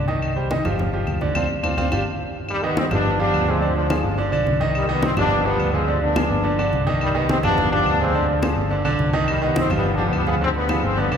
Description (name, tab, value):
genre	latin, salsa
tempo	212 BPM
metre	4/4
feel	straight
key	unclear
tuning	A4 = 440 Hz
part	bright grand piano	accompaniment	0.0-11.2 s	D3 to Eb5	-23 LUFS	right 2 dB	none
part	fingered electric bass	bass	0.0-11.2 s	G1 to D2	-24 LUFS	equal	none
part	congas	percussion	0.1-11.2 s	none	-28 LUFS	left 1 dB	none
part	claves	percussion	0.2-11.2 s	none	-33 LUFS	left 4 dB	none
part	bright trombone section	melody	2.5-11.2 s	D3 to D4	-22 LUFS	left 1 dB	none
room	wet church reverb, RT60 3.5 s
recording	recorded in a church or concert hall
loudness	-18 LUFS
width	side -7 dB against mid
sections	0.0-2.5 A section; 2.5-11.2 B section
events	band accent 1.4-2.5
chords	0.2 Cm; 0.8 G5; 1.4 Dm7; 1.9 G5; 2.5 G7b13; 3.1 G7; 4.2 G; 4.7 Cm; 5.3 G7; 6.4 G5; 7.0 Cm; 7.6 G7; 8.7 G; 9.3 Cm; 9.8 G7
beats	| 0.22 0.50 0.79 1.07 | 1.35 1.64 1.92 2.20 | 2.49 2.77 3.05 3.33 | 3.62 3.90 4.18 4.47 | 4.75 5.03 5.31 5.60 | 5.88 6.16 6.45 6.73 | 7.01 7.29 7.58 7.86 | 8.14 8.43 8.71 8.99 | 9.27 9.56 9.84 10.12 | 10.40 10.69 10.97